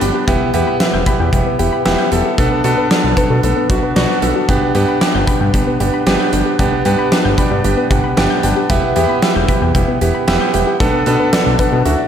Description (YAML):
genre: synth-pop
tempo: 114 BPM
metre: 4/4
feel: straight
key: G major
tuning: A4 = 443 Hz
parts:
  - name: clear baby grand piano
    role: accompaniment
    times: 0.0-12.1 s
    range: B3 to A5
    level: -16 LUFS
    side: right 1 dB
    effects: none
  - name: soft round pluck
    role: arpeggios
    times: 0.0-12.1 s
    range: G3 to G6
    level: -23 LUFS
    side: left 4 dB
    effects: chorus, tape echo, slapback echo
  - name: fat analog bass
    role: bass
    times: 0.0-12.0 s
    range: E1 to B2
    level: -18 LUFS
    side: equal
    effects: none
  - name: huge arena drum kit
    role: drums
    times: 0.0-12.0 s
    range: hi-hat, kick drum, snare drum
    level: -17 LUFS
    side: equal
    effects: none
room: moderate lush hall reverb, RT60 2.1 s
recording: big arena sound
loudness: -12 LUFS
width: side -8 dB against mid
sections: 0.0-12.1 A section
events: grand piano fill 7.1-8.7, 11.3-12.1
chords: 0.3 Em; 2.4 Bm7; 4.5 G; 8.7 Em; 10.8 Bm7